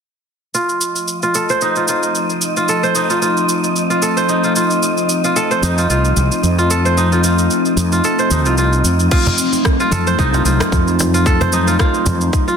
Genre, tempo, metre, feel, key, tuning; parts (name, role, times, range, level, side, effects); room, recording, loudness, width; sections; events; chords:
organic downtempo; 112 BPM; 4/4; swing 55% on 16ths; A4 = 440 Hz
warbly tape-like pad; sustained chords; 1.0-12.6 s; F3 to F4; -20 LUFS; left 2 dB; chorus, built-in reverb, sidechain pumping
kora; arpeggios; 0.5-12.6 s; Eb4 to C5; -17 LUFS; right 1 dB; low-pass filter, tape echo
afro-pop drum kit; drums; 0.5-12.6 s; crash cymbal, rim click, shaker; -22 LUFS; right 1 dB; soft clipping on snare
wind-like tuned noise texture; texture; 0.9-9.1 s; Eb5; -26 LUFS; equal; built-in reverb
fretless electric bass; bass; 5.6-12.3 s; C2 to F2; -16 LUFS; equal; sidechain pumping
electronic kick drum; drums; 9.1-12.4 s; -17 LUFS; equal; overdrive
cajon; percussion; 9.3-12.2 s; -23 LUFS; right 1 dB
moderate lush hall reverb, RT60 2.3 s; dense, heavily limited modern master; -13 LUFS; side -7 dB against mid
0.5-9.1 A section; 9.1-12.6 B section
0.5 F7; 9.1 F7b9